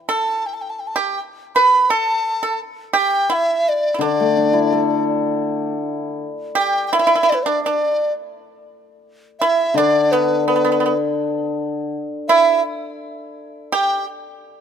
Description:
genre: chinese traditional, Chinese chamber ensemble.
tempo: 84 BPM.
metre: 2/4.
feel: rubato.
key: D zhi mode.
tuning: A4 = 445 Hz.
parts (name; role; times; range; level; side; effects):
mellow hollow large dizi; melody; 0.1-14.1 s; B4 to B5; -18 LUFS; right 1 dB; none.
pipa; second line; 0.1-14.1 s; B3 to B4; -20 LUFS; right 3 dB; none.
hammered dulcimer; accompaniment; 4.0-6.2, 9.7-11.9 s; D3 to A4; -21 LUFS; left 4 dB; none.
room: light reverb.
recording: minimal, uncompressed stereo recording.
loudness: -16 LUFS.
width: side -8 dB against mid.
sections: 0.0-5.5 A section; 5.5-14.6 B section.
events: none.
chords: none.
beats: 0.47 | 1.20 1.91 | 2.61 3.31 | 4.02 4.74 | 5.48 6.21 | 6.92 7.63 | 8.33 9.04 | 9.75 10.47 | 11.20 11.93 | 12.64 13.36.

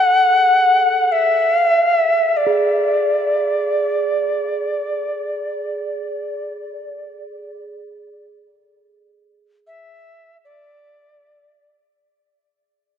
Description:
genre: world meditative, free-time meditation music.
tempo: free time.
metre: none.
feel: none.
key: unclear.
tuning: A4 = 440 Hz.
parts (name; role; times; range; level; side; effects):
bright reedy Native American-style cedar flute; melody; 0.0-11.8 s; D5 to F#5; -16 LUFS; left 1 dB; ping-pong delay.
quartz singing bowl; texture; 0.0-11.6 s; G#4 to A4; -26 LUFS; right 4 dB; none.
room: wet huge ambient reverb, RT60 6.0 s.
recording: dark, warm production.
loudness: -15 LUFS.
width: side -8 dB against mid.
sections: 0.0-12.0 A section.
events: fade-out 0.9-12.0.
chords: none.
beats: free time.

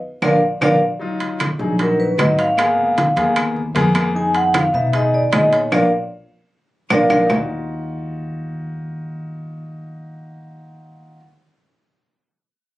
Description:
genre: Afro-Cuban jazz.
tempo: 152 BPM.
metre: 4/4.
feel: straight.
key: Eb harmonic minor.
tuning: A4 = 443 Hz.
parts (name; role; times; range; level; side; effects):
vibraphone with medium mallets; melody; 0.2-7.2 s; Bb4 to Ab5; -16 LUFS; equal; none.
clear concert grand piano; accompaniment; 0.2-11.2 s; Gb3 to Cb5; -23 LUFS; left 2 dB; none.
upright bass; bass; 0.2-11.2 s; Ab1 to Cb3; -24 LUFS; equal; none.
claves; percussion; 0.2-7.4 s; none; -25 LUFS; left 1 dB; none.
congas; percussion; 0.2-7.4 s; none; -25 LUFS; equal; none.
timbales; percussion; 0.2-7.4 s; none; -23 LUFS; right 3 dB; none.
room: moderate club reverb, RT60 0.5 s.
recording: recorded on a phone in the room, club reverb, compression.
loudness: -15 LUFS.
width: side -16 dB against mid.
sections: 0.0-1.0 A section; 1.0-7.3 B section; 7.3-10.5 C section.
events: band accent 0.0-1.0, 5.7-7.3; drum fill 0.2-1.0, 6.7-7.3; vibraphone solo 1.0-7.3; grand piano fill 6.5-7.3.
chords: 0.2 Bb; 1.0 Ebmadd9; 2.6 Abmadd9; 4.1 Fm7b5; 5.7 Bb; 7.3 Ebmadd9.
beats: 0.22 0.61 | 1.01 1.40 1.79 2.18 | 2.58 2.97 3.36 3.75 | 4.15 4.54 4.94 5.33 | 5.72 6.12 6.51 6.91 | 7.30 7.69 8.09 8.48 | 8.88 9.27 9.66 10.06.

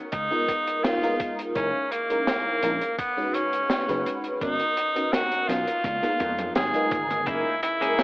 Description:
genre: vaporwave.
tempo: 84 BPM.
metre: 4/4.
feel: straight.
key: unclear.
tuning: A4 = 440 Hz.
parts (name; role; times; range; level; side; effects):
clear tenor saxophone; melody; 0.1-8.0 s; A#3 to G#4; -25 LUFS; equal; tape echo.
vintage slap bass; bass; 0.1-7.4 s; F#1 to E#2; -36 LUFS; equal; tube saturation.
electronic kick drum; drums; 0.1-7.4 s; none; -34 LUFS; equal; none.
open jazz drum kit; drums; 0.1-8.0 s; hi-hat, snare drum, toms; -29 LUFS; equal; gated reverb.
FM electric piano with soft pad layer; accompaniment; 0.3-8.0 s; E3 to D#5; -29 LUFS; equal; phaser, ensemble chorus, cassette tape.
clean electric guitar; riff; 7.3-8.0 s; A#3 to G#4; -29 LUFS; left 1 dB; analog chorus.
room: light reverb, studio reverb.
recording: cassette tape, AM radio sound.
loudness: -23 LUFS.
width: side -24 dB against mid.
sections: 0.0-7.3 A section.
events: drum fill 5.8-7.3.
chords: 0.1 C#13 (rootless); 1.6 F#13 (rootless); 3.0 B69; 4.4 G#m11 (rootless); 5.8 C#13 (rootless); 7.3 F#13.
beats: 0.13 0.84 | 1.56 2.27 2.98 3.70 | 4.41 5.13 5.84 6.56 | 7.27 7.99.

